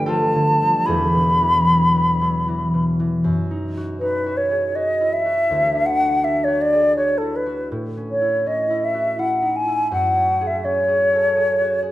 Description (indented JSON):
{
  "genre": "classical, impressionist duo for flute and harp",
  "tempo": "74-84 BPM",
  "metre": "3/4",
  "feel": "rubato",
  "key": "unclear",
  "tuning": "A4 = 444 Hz",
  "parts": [
    { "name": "mellow silver concert flute", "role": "melody", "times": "0.0-11.8 s", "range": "A4 to B5", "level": "-18 LUFS", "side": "equal", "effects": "none" },
    { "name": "concert harp", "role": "accompaniment", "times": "0.0-11.9 s", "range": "E1 to G5", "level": "-22 LUFS", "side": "equal", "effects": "none" }
  ],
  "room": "moderate recital hall reverb, RT60 1.5 s",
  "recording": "none",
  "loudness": "-17 LUFS",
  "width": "side -15 dB against mid",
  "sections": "0.0-3.2 A section; 3.2-11.9 B section",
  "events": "none",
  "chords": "0.0 G9; 0.9 Eadd9; 3.2 F#7sus2; 5.5 Dadd9; 7.7 A; 9.9 F#madd9"
}